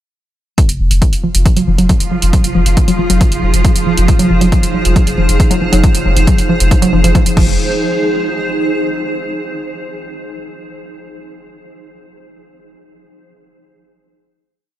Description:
driving peak-time techno; 137 BPM; 4/4; straight; F phrygian; A4 = 440 Hz
warbly dusty pluck; riff; 0.6-7.6 s; F3 to Gb3; -17 LUFS; equal; chorus, sidechain pumping, tape echo
swarming drone; drone; 1.4-7.6 s; F3 to F4; -22 LUFS; right 2 dB; built-in reverb, lush chorus, sidechain pumping
electronic kick drum; drums; 0.6-7.5 s; -14 LUFS; equal
punchy analog drum machine; drums; 0.6-7.5 s; crash cymbal, hi-hat; -21 LUFS; right 2 dB; sidechain pumping on hats, sidechain pumping on cymbals
granular cloud pad; texture; 2.2-9.3 s; Eb4 to C5; -19 LUFS; right 1 dB; built-in reverb, sidechain pumping
saturated sub bass; bass; 0.7-7.6 s; F1; -15 LUFS; equal; overdrive, sidechain pumping, low-pass filter
light reverb; -10 LUFS; side -13 dB against mid
0.6-7.6 groove; 7.6-9.3 final note
fade-in on ambient pad 0.6-7.6; filter sweep on synth arpeggio sound 0.6-7.6
0.6 Fm; 7.6 Ab/Eb

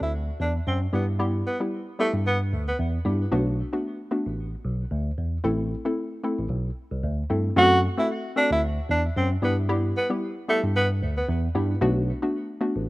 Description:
afrobeats; 113 BPM; 4/4; swing 55% on 16ths; E minor; A4 = 440 Hz
warm tenor saxophone; melody; 0.0-2.8, 7.6-11.3 s; A3 to F#4; -24 LUFS; right 1 dB
hollow square pluck; accompaniment; 0.0-12.8 s; G3 to A4; -27 LUFS; left 1 dB; chorus
bell-like tine electric piano; bass; 0.0-12.9 s; A1 to G2; -25 LUFS; equal; phaser
small room ambience; rough home demo mix; -23 LUFS; side -19 dB against mid
0.0-7.6 A section; 7.6-12.9 B section
0.0 N.C.; 0.9 Em/G; 3.3 Bm7; 5.4 Am; 7.6 F#dim; 9.4 Em/G; 11.8 Bm7

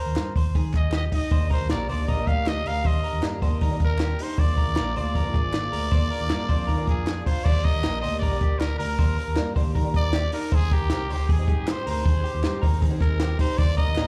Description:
jangly indie pop; 156 BPM; 4/4; straight; Eb major; A4 = 440 Hz
growling trumpet; melody; 0.0-14.1 s; G4 to F5; -32 LUFS; equal; slapback echo, digital delay
electric guitar through a small old amp; arpeggios; 0.0-14.1 s; Eb4 to C5; -37 LUFS; equal; slapback echo, digital delay
vintage muted picked electric bass; bass; 0.1-14.1 s; F1 to Eb3; -29 LUFS; equal
compact cocktail drum kit; drums; 0.2-14.1 s; crash cymbal, hi-hat, kick drum, snare drum; -26 LUFS; equal
group handclap; percussion; 0.2-14.1 s; -46 LUFS; equal
fingerpicked twelve-string acoustic guitar; accompaniment; 1.3-14.1 s; Eb3 to Ab4; -36 LUFS; equal; slapback echo
small room reverb; live gig heard through the venue's PA, club reverb, vinyl crackle; -24 LUFS; mono
0.0-7.5 A section; 7.5-14.1 A section
0.0 Abmaj7; 1.3 Ebmaj7; 4.4 Bb7; 7.5 Ebmaj7; 10.5 Abmaj7

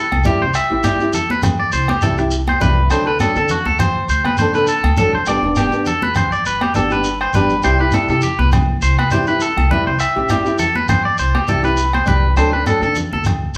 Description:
highlife guitar band; 102 BPM; 4/4; swing 54% on 16ths; C major; A4 = 441 Hz
electric guitar at the edge of break-up; arpeggios; 0.0-13.3 s; F#4 to E5; -20 LUFS; equal
upright bass; bass; 0.1-13.5 s; E1 to D3; -22 LUFS; equal
agogo bells; percussion; 0.1-13.4 s; -29 LUFS; equal
congas; percussion; 0.1-13.4 s; -26 LUFS; equal
flamenco guitar; accompaniment; 0.2-13.0 s; F#3 to A4; -22 LUFS; equal
shekere; percussion; 0.2-13.6 s; -25 LUFS; equal
wet large studio reverb, RT60 0.9 s; band playing live in one room; -16 LUFS; mono
0.0-13.6 A section
0.0 C; 2.9 D7; 5.3 G; 7.6 C; 12.4 D7

